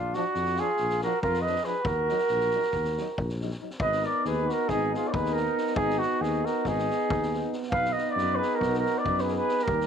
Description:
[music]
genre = balkan folk, Balkan brass band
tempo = 277 BPM (eighths)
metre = 9/8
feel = straight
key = unclear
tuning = A4 = 442 Hz
[part]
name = mellow flugelhorn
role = melody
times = 0.0-9.9 s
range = F4 to F5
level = -27 LUFS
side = right 3 dB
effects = none
[part]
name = warm flugelhorn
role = second line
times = 0.0-9.9 s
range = D4 to B4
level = -35 LUFS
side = left 13 dB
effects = none
[part]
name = dark tuba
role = bass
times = 0.0-9.9 s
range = Ab1 to F#2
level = -32 LUFS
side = left 1 dB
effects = none
[part]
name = street-band drum kit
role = percussion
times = 0.1-9.9 s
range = kick drum, snare drum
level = -36 LUFS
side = left 1 dB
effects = none
[part]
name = clear trombone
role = accompaniment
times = 0.2-9.9 s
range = D4 to Eb4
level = -35 LUFS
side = left 17 dB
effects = none
[part]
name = mellow euphonium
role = accompaniment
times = 0.2-9.9 s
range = F3 to B3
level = -35 LUFS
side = right 12 dB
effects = none
[sound]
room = moderate spring reverb, RT60 1.6 s, small room reverb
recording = 1960s-style stereo with parts hard left and right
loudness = -24 LUFS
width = side -7 dB against mid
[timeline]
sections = 0.0-3.8 A section; 3.8-9.9 B section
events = none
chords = 0.0 Bb; 1.9 Ebm; 3.8 Abm; 7.7 B

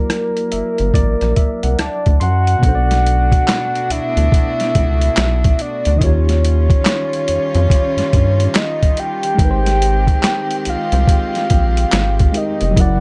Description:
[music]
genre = R&B, neo-soul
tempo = 71 BPM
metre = 4/4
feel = swing 63% on 16ths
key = unclear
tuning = A4 = 440 Hz
[part]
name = soft octave-layered synth lead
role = melody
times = 0.0-13.0 s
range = A#4 to G5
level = -22 LUFS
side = equal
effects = chorus
[part]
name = tine electric piano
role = accompaniment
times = 0.0-13.0 s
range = B2 to C6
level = -27 LUFS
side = equal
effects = overdrive
[part]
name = boom bap sampler-style drum kit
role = drums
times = 0.1-13.0 s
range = handclaps, hi-hat, kick drum, rim click, snare drum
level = -18 LUFS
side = equal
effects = none
[part]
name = rubbery square bass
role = bass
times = 0.5-13.0 s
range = E#1 to G2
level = -18 LUFS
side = equal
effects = none
[part]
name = warm chamber string section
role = sustained chords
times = 2.6-13.0 s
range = D#3 to G4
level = -28 LUFS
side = equal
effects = none
[sound]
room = light reverb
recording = dark, warm production, nothing above 10.4 kHz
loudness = -16 LUFS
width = mono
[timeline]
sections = 0.0-2.6 A section; 2.6-13.0 B section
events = tine electric piano fill 0.1-2.6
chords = 0.0 F#7alt; 2.6 Bm7; 6.0 D#9; 9.4 G#maj7

